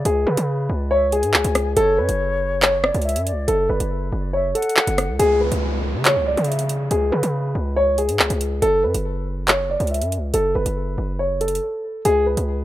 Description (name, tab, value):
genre	hip hop, drill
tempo	140 BPM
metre	4/4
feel	half-time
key	C# phrygian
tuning	A4 = 440 Hz
part	mellow silver concert flute	second line	0.0-5.2 s	C#5 to G#5	-29 LUFS	left 4 dB	ping-pong delay
part	distorted 808-style bass	bass	0.0-12.6 s	F#1 to C#3	-23 LUFS	equal	distortion
part	dark concert grand piano	melody	0.1-12.6 s	G#4 to E5	-20 LUFS	equal	ping-pong delay
part	drill drum kit	drums	0.1-12.5 s	handclaps, hi-hat, rim click	-20 LUFS	right 1 dB	none
part	downlifter	sound effects	5.2-8.6 s	none	-32 LUFS	right 1 dB	none
room	small room ambience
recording	rough home demo mix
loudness	-18 LUFS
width	side -14 dB against mid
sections	0.0-5.2 A section; 5.2-12.6 B section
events	break 11.6-12.1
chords	0.0 C#5; 1.8 F#m; 5.2 C#5; 8.6 F#m; 12.1 C#5